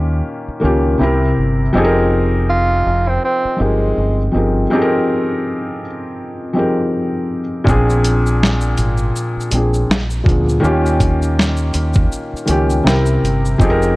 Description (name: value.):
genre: lo-fi hip hop.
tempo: 81 BPM.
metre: 4/4.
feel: swing 58% on 16ths.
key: F minor.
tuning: A4 = 440 Hz.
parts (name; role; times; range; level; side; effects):
felt-muted upright piano; accompaniment; 0.0-14.0 s; Bb2 to Bb4; -16 LUFS; equal; low-pass filter.
deep dub fingered electric bass; bass; 0.0-14.0 s; F1 to Eb2; -18 LUFS; equal; none.
breathy tenor saxophone; melody; 2.5-4.3 s; Ab3 to F4; -18 LUFS; right 1 dB; low-pass filter.
dusty soul sampler-style drum kit; drums; 7.7-14.0 s; hi-hat, kick drum, shaker, snare drum; -17 LUFS; equal; overdrive.
room: light reverb.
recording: cassette tape.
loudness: -13 LUFS.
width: side -20 dB against mid.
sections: 0.0-14.0 A section.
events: break 4.7-7.7.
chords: 0.0 Eb9; 1.0 C7; 1.7 Fm11; 7.7 Bb7; 9.9 Bb7b9; 10.6 Eb9; 12.9 C7.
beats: 0.26 1.00 | 1.74 2.48 3.22 3.96 | 4.70 5.45 6.19 6.93 | 7.67 8.41 9.15 9.89 | 10.63 11.37 12.11 12.85 | 13.59.